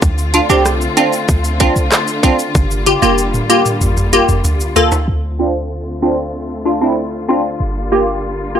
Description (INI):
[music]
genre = dancehall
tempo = 95 BPM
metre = 4/4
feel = straight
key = D minor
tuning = A4 = 440 Hz
[part]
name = warm studio string section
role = sustained chords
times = 0.0-8.6 s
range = D3 to F4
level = -21 LUFS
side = left 2 dB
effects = sidechain pumping, low-pass filter
[part]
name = clean 808-style bass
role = bass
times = 0.0-8.6 s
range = F1 to D2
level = -20 LUFS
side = equal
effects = none
[part]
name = island pop drum kit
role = drums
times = 0.0-5.1 s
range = handclaps, hi-hat, kick drum, rim click, shaker, toms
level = -16 LUFS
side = equal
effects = overdrive
[part]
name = egg shaker and timbales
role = percussion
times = 0.0-5.1 s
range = none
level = -29 LUFS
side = right 5 dB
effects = none
[part]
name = wavetable chord stab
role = accompaniment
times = 0.3-8.6 s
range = Bb3 to A4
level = -13 LUFS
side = equal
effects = sidechain pumping, low-pass filter
[sound]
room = light reverb, digital ambience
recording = dry, gritty hardware recording, transformer saturation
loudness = -12 LUFS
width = side -9 dB against mid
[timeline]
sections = 0.0-5.1 A section; 5.1-8.6 B section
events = drum fill 2.5-5.1; filter sweep 5.1-8.6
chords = 0.0 Dm7; 2.5 Gm7; 5.1 Dm7; 7.6 Gm7